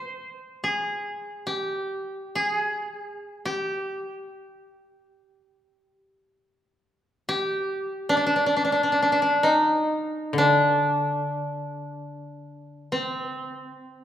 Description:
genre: japanese traditional, Japanese chamber music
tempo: free time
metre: none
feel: none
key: unclear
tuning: A4 = 435 Hz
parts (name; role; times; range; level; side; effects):
- koto; melody; 0.0-14.0 s; C4 to C5; -24 LUFS; equal; none
- koto; accompaniment; 10.3-13.7 s; D3; -30 LUFS; left 2 dB; none
room: wet recital hall reverb, RT60 1.6 s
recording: recorded in a church or concert hall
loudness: -23 LUFS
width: side -11 dB against mid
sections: 0.0-14.0 A section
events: slowing down 7.3-14.0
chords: none

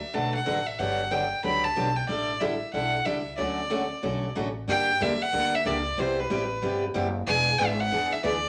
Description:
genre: country, western swing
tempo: 185 BPM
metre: 4/4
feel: swing 63% on 8ths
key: unclear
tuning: A4 = 445 Hz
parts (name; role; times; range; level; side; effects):
- clear fiddle; melody; 0.0-8.5 s; B4 to B5; -29 LUFS; equal; none
- picked steel-string acoustic guitar; accompaniment; 0.1-8.4 s; C3 to B4; -31 LUFS; equal; none
- upright bass; bass; 0.1-8.5 s; E1 to G2; -36 LUFS; equal; none
room: wet studio reverb, RT60 0.8 s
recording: none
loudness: -27 LUFS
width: mono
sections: 0.0-4.7 A section; 4.7-8.5 B section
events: none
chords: 0.0 D69; 0.8 Gmaj7; 2.1 A7sus4; 3.4 Dmaj7; 4.7 Gm; 6.0 Cmaj7; 7.3 E7

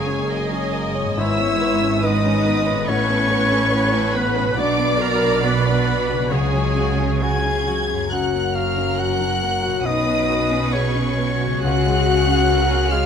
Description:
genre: cinematic, emotional film score for orchestra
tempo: 69 BPM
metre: 4/4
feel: rubato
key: unclear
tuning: A4 = 439 Hz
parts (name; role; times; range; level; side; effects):
- rich studio violin section; melody; 0.0-13.1 s; G#5 to G#6; -27 LUFS; left 2 dB; none
- clear studio violin section; second line; 0.0-13.1 s; A#3 to C#5; -30 LUFS; left 2 dB; none
- hollow concert flute; second line; 0.0-13.1 s; G#4 to G#5; -26 LUFS; equal; none
- warm oboe; second line; 0.0-13.1 s; G#4 to G#5; -28 LUFS; right 1 dB; none
- rich studio viola section; accompaniment; 0.0-13.1 s; F#4 to D#5; -27 LUFS; right 2 dB; none
- warm grand piano; accompaniment; 0.0-13.1 s; B1 to C#5; -27 LUFS; left 2 dB; none
- mellow French horn section; sustained chords; 0.0-13.1 s; G#3 to A#4; -24 LUFS; left 5 dB; none
- concert harp; arpeggios; 0.0-13.1 s; F#2 to D5; -29 LUFS; left 11 dB; none
- rich studio cello section; bass; 0.0-13.1 s; F#2 to C#3; -26 LUFS; right 4 dB; none
- warm studio double bass section; bass; 0.0-13.1 s; F#1 to C#2; -25 LUFS; right 4 dB; none
room: moderate scoring stage reverb, RT60 1.6 s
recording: close, detailed microphones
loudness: -17 LUFS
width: side -7 dB against mid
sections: 0.0-13.1 A section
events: none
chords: 0.0 F#; 1.2 E6/G#; 2.9 Aadd9; 4.6 Bm; 6.3 C#sus4; 8.1 F#; 9.9 Bsus2; 11.6 C#sus4

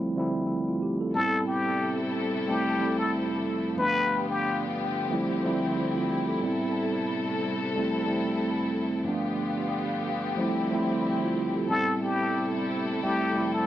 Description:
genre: hip hop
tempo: 91 BPM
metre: 4/4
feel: swing 55% on 16ths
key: A minor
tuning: A4 = 440 Hz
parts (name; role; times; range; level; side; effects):
- mellow tine electric piano; accompaniment; 0.0-13.7 s; D2 to A4; -27 LUFS; right 2 dB; medium stereo tremolo, cassette tape, high-pass filter, low-pass filter
- trumpet with plunger mute; melody; 1.1-4.6, 11.7-13.7 s; G4 to B4; -28 LUFS; left 2 dB; high-pass filter, low-pass filter, plate reverb, analog delay
- rich studio string section; sustained chords; 1.1-13.7 s; C3 to A4; -32 LUFS; left 4 dB; high-pass filter, low-pass filter, plate reverb
room: wet studio ambience, RT60 0.5 s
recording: none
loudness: -25 LUFS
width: side -12 dB against mid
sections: 0.0-1.1 A section; 1.1-13.7 B section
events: none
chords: 0.0 Dm11; 1.1 Am7; 2.5 Fmaj7; 3.8 G7; 5.1 Dm11; 6.4 Am7; 7.7 Fmaj7; 9.1 G7; 10.4 Dm11; 11.7 Am7; 13.0 Fmaj7

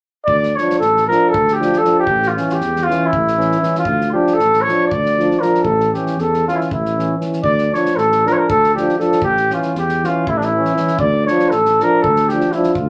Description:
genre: balkan folk, Balkan brass band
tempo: 235 BPM (eighths)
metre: 7/8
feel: straight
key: D harmonic minor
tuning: A4 = 440 Hz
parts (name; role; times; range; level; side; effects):
- mellow cornet; melody; 0.2-12.9 s; D4 to D5; -18 LUFS; equal; none
- dark tuba; bass; 0.3-12.9 s; A1 to E2; -25 LUFS; equal; none
- natural country drum kit; percussion; 0.3-12.9 s; kick drum, snare drum; -33 LUFS; equal; none
- mellow euphonium; accompaniment; 0.6-12.8 s; E3 to F3; -23 LUFS; equal; none
- warm trombone; accompaniment; 0.6-12.8 s; C#4 to D4; -25 LUFS; equal; none
room: wet club reverb, RT60 0.5 s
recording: none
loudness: -16 LUFS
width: mono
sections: 0.3-12.9 A section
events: none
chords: 0.3 Dm; 2.1 A; 3.9 Dm; 5.6 A; 7.4 Dm; 9.2 A; 11.0 Dm

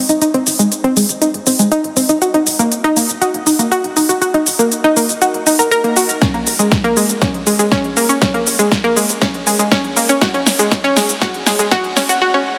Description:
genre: progressive house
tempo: 120 BPM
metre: 4/4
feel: straight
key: Bb minor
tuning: A4 = 441 Hz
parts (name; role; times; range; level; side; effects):
- analog pluck; arpeggios; 0.0-12.4 s; Ab3 to Bb4; -16 LUFS; equal; chorus, sidechain pumping, tape echo
- tight sequencer bass; bass; 0.0-12.2 s; Eb1 to Bb1; -34 LUFS; equal; none
- big-room dance drum kit; drums; 0.1-12.2 s; cabasa, hi-hat, snare drum; -18 LUFS; equal; overdrive, small room ambience
- electronic kick drum; drums; 6.2-11.8 s; none; -20 LUFS; equal; overdrive, small room ambience
room: moderate huge ambient reverb, RT60 7.2 s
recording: dense, heavily limited modern master, high-pass filter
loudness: -14 LUFS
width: mono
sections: 0.0-12.6 A section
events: build-up 0.0-12.6; filter sweep on synth pluck 0.0-12.6; drum fill 6.2-12.2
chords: 0.0 Ab; 2.2 Ebm; 6.2 Bbm7; 10.2 Gbsus2

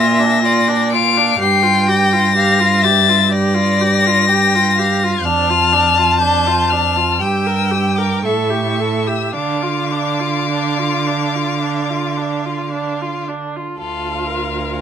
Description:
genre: classical, slow romantic movement for string quartet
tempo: 52-63 BPM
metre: 4/4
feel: rubato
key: D minor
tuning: A4 = 440 Hz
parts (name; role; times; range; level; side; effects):
- rich violin; melody; 0.0-14.8 s; F5 to D7; -17 LUFS; left 8 dB; none
- rich violin; second line; 0.0-14.8 s; A4 to A5; -21 LUFS; left 2 dB; none
- clear viola; accompaniment; 0.0-14.8 s; D4 to Bb4; -21 LUFS; right 2 dB; none
- rich cello; bass; 0.0-14.8 s; D2 to D3; -19 LUFS; right 3 dB; none
room: light reverb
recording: dark, warm production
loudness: -13 LUFS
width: side -8 dB against mid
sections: 0.0-13.8 A section; 13.8-14.8 B section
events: none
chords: 0.0 Bb; 1.4 Gm7; 5.2 Dm/F; 7.2 Gm; 8.2 A7; 9.3 Dm

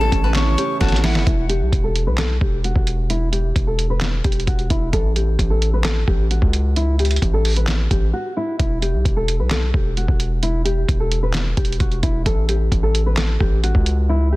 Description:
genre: hip hop, trap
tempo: 131 BPM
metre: 4/4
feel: half-time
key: E dorian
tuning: A4 = 440 Hz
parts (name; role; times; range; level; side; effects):
- nylon-string guitar; melody; 0.0-14.4 s; E4 to B4; -24 LUFS; left 1 dB; low-pass filter
- reedy concert flute; second line; 0.0-1.3 s; F#5 to C#6; -26 LUFS; left 4 dB; ping-pong delay
- felt-muted upright piano; accompaniment; 0.0-1.3 s; C#3 to C#5; -27 LUFS; right 5 dB; low-pass filter
- warm analog pad; sustained chords; 0.0-1.2 s; E4 to C#6; -35 LUFS; right 5 dB; none
- hard-hitting 808-style bass; bass; 0.0-14.4 s; E1 to C#2; -19 LUFS; equal; none
- lo-fi sampler-style drum kit; drums; 0.1-14.0 s; handclaps, hi-hat, kick drum, snare drum; -20 LUFS; equal; none
room: little or no reverb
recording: dense, heavily limited modern master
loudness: -16 LUFS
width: side -19 dB against mid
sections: 0.0-1.3 A section; 1.3-14.4 B section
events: drum fill 0.8-1.3; break 8.1-8.6; hi-hats muted 14.1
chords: 0.0 A; 1.3 E5; 4.9 A; 8.6 E5; 12.3 A

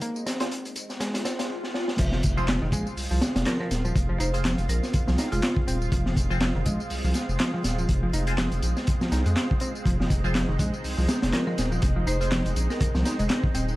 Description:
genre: breakbeat, breaks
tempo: 122 BPM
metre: 4/4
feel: swing 57% on 16ths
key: F minor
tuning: A4 = 440 Hz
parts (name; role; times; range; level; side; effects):
- lush unison pad; sustained chords; 0.0-13.8 s; Ab3 to F4; -35 LUFS; right 2 dB; chorus, sidechain pumping
- picked electric bass; riff; 0.0-13.6 s; Eb3 to Eb4; -32 LUFS; equal; overdrive, vintage 12-bit sampler grit, ping-pong delay
- crunchy breakbeat drum kit; drums; 0.0-13.7 s; crash cymbal, hi-hat, kick drum, snare drum; -26 LUFS; equal; high-pass filter on kick, high-pass filter on hats, high-pass filter on cymbals, high-pass filter on snare, high-pass filter on room
- electronic tambourine and handclaps; drums; 0.0-13.8 s; none; -36 LUFS; equal; none
- band-passed chord stab; stabs; 0.4-12.3 s; C4 to C5; -35 LUFS; equal; phaser, wide subtle chorus, vintage 12-bit sampler grit, ping-pong delay
- swell and impact; sound effects; 1.2-4.0 s; none; -35 LUFS; left 1 dB; none
- saturated sub bass; bass; 2.0-13.8 s; Eb1 to F2; -26 LUFS; equal; none
- marimba with medium hard mallets; melody; 3.5-5.5, 11.3-12.9 s; F4 to C5; -36 LUFS; equal; small speaker sound, ping-pong delay
room: little or no reverb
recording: vinyl crackle, lossy compression artefacts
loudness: -23 LUFS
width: side -18 dB against mid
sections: 0.0-2.0 A section; 2.0-13.8 B section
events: swell 1.2-2.0; drum fill 1.6-2.0; drop 2.0-13.8; impact 2.0-4.0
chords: 0.0 Fm

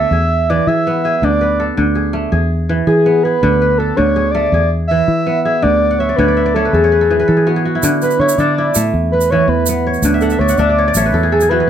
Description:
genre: west african traditional, West African string and xylophone music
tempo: 109 BPM (dotted quarters)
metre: 12/8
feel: straight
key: D lydian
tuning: A4 = 440 Hz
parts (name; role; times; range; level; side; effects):
- breathy flute-like synth lead; melody; 0.0-11.7 s; G#4 to E5; -15 LUFS; equal; chorus
- kora; arpeggios; 0.0-11.7 s; D3 to F#5; -16 LUFS; right 1 dB; none
- fingered electric bass; bass; 0.0-11.7 s; A1 to E3; -17 LUFS; equal; none
- tube shaker; percussion; 7.8-11.5 s; none; -21 LUFS; right 6 dB; none
room: light reverb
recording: none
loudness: -12 LUFS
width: side -9 dB against mid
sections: 0.0-7.8 A section; 7.8-11.7 B section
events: kora fill 5.9-7.8, 10.1-11.7; soft synth lead solo 7.8-11.7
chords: 0.1 E; 1.2 D5; 2.3 E; 3.4 D5; 4.5 E; 5.6 D5; 6.7 E; 7.8 D5; 8.9 E5; 10.0 D5; 11.1 E5

